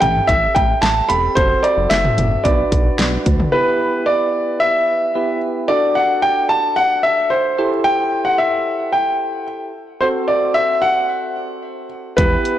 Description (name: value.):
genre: synth-pop.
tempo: 111 BPM.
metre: 4/4.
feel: straight.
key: unclear.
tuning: A4 = 443 Hz.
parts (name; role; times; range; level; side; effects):
warm grand piano; melody; 0.0-12.6 s; B4 to B5; -16 LUFS; equal; digital delay.
soft electric-piano-like synth keys; accompaniment; 0.0-12.6 s; B3 to D5; -23 LUFS; right 2 dB; chorus.
chorused synth bass; bass; 0.0-3.5, 12.2-12.4 s; E1 to D2; -20 LUFS; equal; none.
pop drum kit; drums; 0.0-3.5, 12.2-12.6 s; cowbell, hi-hat, kick drum, snare drum, toms; -19 LUFS; equal; none.
room: moderate lush hall reverb, RT60 2.2 s.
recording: blown-out, overdriven recording, overdrive.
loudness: -14 LUFS.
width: side -12 dB against mid.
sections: 0.0-3.5 A section; 3.5-12.6 A section.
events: none.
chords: 0.0 Am7; 1.4 F#dim; 2.5 Bm; 3.5 Em; 5.7 D; 7.6 Am7; 10.0 F#dim.